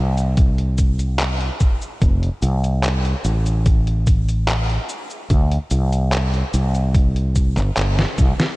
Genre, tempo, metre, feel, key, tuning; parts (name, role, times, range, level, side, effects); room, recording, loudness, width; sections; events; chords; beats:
vaporwave; 73 BPM; 4/4; straight; A4 = 439 Hz
fretless electric bass; bass; 0.0-8.3 s; F1 to D2; -18 LUFS; equal
detuned 8-bit digital drum machine; drums; 0.2-8.6 s; cabasa, handclaps, hi-hat, snare drum; -24 LUFS; equal; studio reverb
electronic kick drum; drums; 0.4-8.4 s; -16 LUFS; equal; studio reverb
light reverb; cassette tape; -16 LUFS; side -21 dB against mid
0.0-8.6 A section
drum fill 8.0-8.6
0.37 1.20 | 2.02 2.84 3.66 4.48 | 5.30 6.13 6.95 7.77